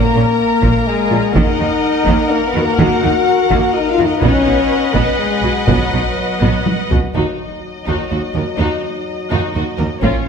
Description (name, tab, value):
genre	cinematic, epic orchestral film score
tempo	125 BPM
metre	3/4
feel	straight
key	Eb minor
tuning	A4 = 435 Hz
part	warm symphonic violin section	melody	0.0-10.3 s	F#4 to Gb5	-24 LUFS	left 6 dB	none
part	rich symphonic violin section	second line	0.0-10.2 s	Db4 to Bb5	-23 LUFS	left 2 dB	none
part	rich symphonic viola section	accompaniment	0.0-10.2 s	Bb3 to B4	-21 LUFS	right 2 dB	none
part	mellow French horn section	sustained chords	0.0-10.3 s	F3 to Gb4	-18 LUFS	left 4 dB	none
part	clear symphonic cello section	bass	0.2-10.1 s	Eb2 to Eb3	-22 LUFS	right 3 dB	none
part	rich symphonic double bass section	bass	0.2-10.1 s	Bb1 to Eb2	-21 LUFS	right 4 dB	none
part	taiko ensemble	drums	0.6-10.3 s	none	-20 LUFS	equal	none
room	moderate scoring stage reverb, RT60 2.0 s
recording	none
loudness	-13 LUFS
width	side -6 dB against mid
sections	0.0-7.2 A section; 7.2-10.3 B section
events	drum fill 6.4-7.2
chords	0.0 N.C.; 1.4 Ebm; 4.2 B; 7.2 Ebm